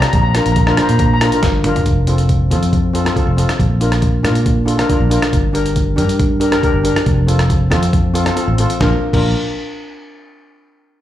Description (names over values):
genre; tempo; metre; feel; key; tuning
calypso; 138 BPM; 4/4; straight; Bb major; A4 = 440 Hz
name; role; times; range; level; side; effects
steel pan; melody; 0.0-1.3 s; Bb5; -19 LUFS; left 3 dB; slapback echo
steel pan; accompaniment; 0.0-9.3 s; C4 to C5; -18 LUFS; left 1 dB; slapback echo
fingered electric bass; bass; 0.0-9.3 s; F1 to Bb2; -15 LUFS; equal; none
boom bap sampler-style drum kit; drums; 0.0-9.2 s; crash cymbal, hi-hat, kick drum, rim click, snare drum, toms; -18 LUFS; equal; none
room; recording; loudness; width
light reverb, digital ambience; live gig heard through the venue's PA, club reverb; -12 LUFS; side -12 dB against mid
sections
0.0-1.9 A section; 1.9-8.8 B section; 8.8-10.5 C section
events
drum fill 1.4-1.9; kick and snare drop out 8.4-8.8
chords
0.1 Bb; 1.9 F; 3.6 Bb; 5.3 Gm; 7.1 F; 8.8 Bb